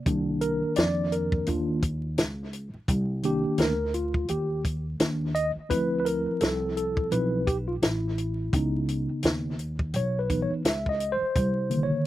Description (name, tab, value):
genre	hip hop, jazz-hop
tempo	85 BPM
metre	4/4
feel	swing 58% on 16ths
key	unclear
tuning	A4 = 439 Hz
part	mellow tine electric piano	accompaniment	0.0-12.1 s	Db3 to Fb5	-27 LUFS	equal	medium stereo tremolo
part	upright bass	bass	0.1-11.9 s	A1 to F2	-30 LUFS	equal	none
part	compact cocktail drum kit	drums	0.1-11.9 s	hi-hat, kick drum, snare drum	-27 LUFS	equal	none
room	little or no reverb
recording	recorded outdoors, with no room sound, vinyl crackle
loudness	-24 LUFS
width	side -14 dB against mid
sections	0.1-12.1 A section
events	tine electric piano solo 0.1-12.1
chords	0.1 Cm9; 5.7 Dm9; 8.5 Dbm9; 11.4 Cm9